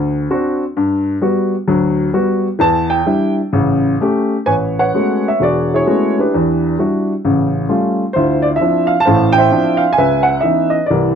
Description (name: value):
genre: solo jazz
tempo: 131 BPM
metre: 4/4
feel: swing 67% on 8ths, rubato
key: unclear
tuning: A4 = 440 Hz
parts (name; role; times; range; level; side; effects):
- warm upright piano; solo; 0.0-11.2 s; E1 to A5; -12 LUFS; equal; none
room: studio ambience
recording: dry, close 1970s-style studio recording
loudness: -12 LUFS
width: side -7 dB against mid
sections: 0.0-4.5 A section; 4.5-11.2 B section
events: upright piano solo 0.0-4.5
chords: 0.0 D7; 0.8 Gmaj7; 2.6 Em7; 3.5 A7; 4.5 Amaj13; 6.3 Em9; 7.3 A7b13; 8.2 Dm9; 10.0 C#m9